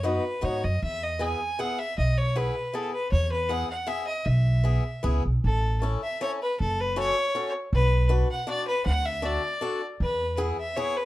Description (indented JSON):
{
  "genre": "alpine folk, alpine dance band",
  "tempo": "157 BPM",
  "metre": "3/4",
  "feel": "rubato",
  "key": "E major, A major from 5.4 s",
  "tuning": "A4 = 440 Hz",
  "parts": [
    { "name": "bright fiddle", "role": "melody", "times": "0.0-11.1 s", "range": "A4 to G#5", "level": "-28 LUFS", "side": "left 1 dB", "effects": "none" },
    { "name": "picked swing-style acoustic guitar", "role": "accompaniment", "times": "0.0-10.9 s", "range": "B3 to B4", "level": "-31 LUFS", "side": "left 2 dB", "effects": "none" },
    { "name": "upright bass", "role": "bass", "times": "0.0-10.5 s", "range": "F#1 to G#2", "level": "-25 LUFS", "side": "equal", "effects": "none" }
  ],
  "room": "light reverb",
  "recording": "dark, warm production",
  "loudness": "-24 LUFS",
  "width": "side -16 dB against mid",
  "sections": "0.0-5.4 A section; 5.4-11.1 B section",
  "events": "none",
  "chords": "0.0 B; 0.8 E; 5.4 A; 6.6 F#m; 7.7 Bm; 8.9 D; 10.0 E"
}